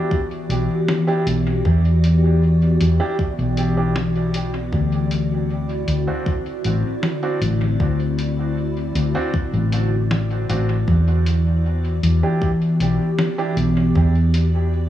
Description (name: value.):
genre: ambient dub.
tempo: 78 BPM.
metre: 4/4.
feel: straight.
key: E minor.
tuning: A4 = 440 Hz.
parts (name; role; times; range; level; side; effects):
soft additive organ-like pad; sustained chords; 0.0-14.9 s; D3 to D5; -22 LUFS; equal; ensemble chorus, built-in reverb.
warm upright piano; stabs; 0.0-13.5 s; C4 to G4; -28 LUFS; right 3 dB; dub echo.
electronic kick drum; drums; 0.1-14.1 s; none; -23 LUFS; equal; studio reverb.
hollow-body short-scale fingered electric bass; bass; 0.5-14.9 s; A1 to E2; -18 LUFS; equal; none.
lo-fi sampler-style drum kit; drums; 0.5-14.5 s; hi-hat, snare drum; -28 LUFS; left 1 dB; studio reverb, dub echo.
room: light reverb.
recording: echo-heavy mix, studio ambience.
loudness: -17 LUFS.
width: side -12 dB against mid.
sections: 0.0-14.9 A section.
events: none.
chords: 0.0 Em7; 4.7 D7; 10.9 Em7.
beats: 0.11 0.88 | 1.65 2.42 3.19 3.96 | 4.73 5.50 6.27 7.04 | 7.80 8.57 9.34 10.11 | 10.88 11.65 12.42 13.19 | 13.96 14.73.